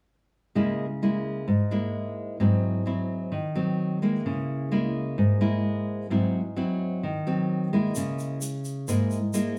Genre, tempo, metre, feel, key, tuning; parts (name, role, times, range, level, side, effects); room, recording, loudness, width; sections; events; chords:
bossa nova; 130 BPM; 4/4; straight; C# dorian; A4 = 438 Hz
nylon-string guitar; accompaniment; 0.6-9.6 s; G#2 to E4; -27 LUFS; equal
tube shaker; percussion; 8.0-9.6 s; -40 LUFS; equal
wet large studio reverb, RT60 0.8 s; band playing live in one room; -27 LUFS; mono
0.5-9.6 A section
0.5 C#m6; 2.4 G#7b13; 4.2 C#m6; 6.1 G#7b13; 7.9 C#m6